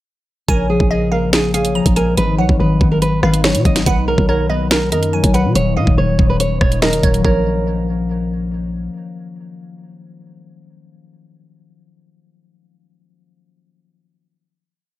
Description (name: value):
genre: hip hop, drill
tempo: 142 BPM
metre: 4/4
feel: half-time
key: Bb phrygian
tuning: A4 = 441 Hz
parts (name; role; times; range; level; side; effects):
- nylon-string guitar; melody; 0.5-8.5 s; Ab4 to Eb5; -20 LUFS; right 2 dB; low-pass filter, tape echo
- glassy wavetable pluck; second line; 0.5-8.5 s; Db5 to Bb5; -26 LUFS; right 3 dB; chorus, tape echo
- concert harp; accompaniment; 0.5-12.0 s; Db3 to Db4; -20 LUFS; left 4 dB; low-pass filter
- growling 808-style bass; bass; 0.5-8.9 s; Eb1 to Cb3; -18 LUFS; equal; none
- drill drum kit; drums; 0.5-7.3 s; hi-hat, kick drum, rim click, snare drum; -16 LUFS; equal; none
room: little or no reverb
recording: none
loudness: -13 LUFS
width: side -15 dB against mid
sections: 0.5-7.2 hook; 7.2-10.6 final chord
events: none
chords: 0.5 Bbm7; 2.2 Abm7; 3.9 Bmaj7; 5.6 Ebm7; 7.2 Bbm7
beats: | 0.48 0.91 1.33 1.75 | 2.17 2.60 3.02 3.44 | 3.87 4.29 4.71 5.13 | 5.55 5.98 6.40 6.82 | 7.25 7.67 8.09 8.51 | 8.94 9.36 9.78 10.20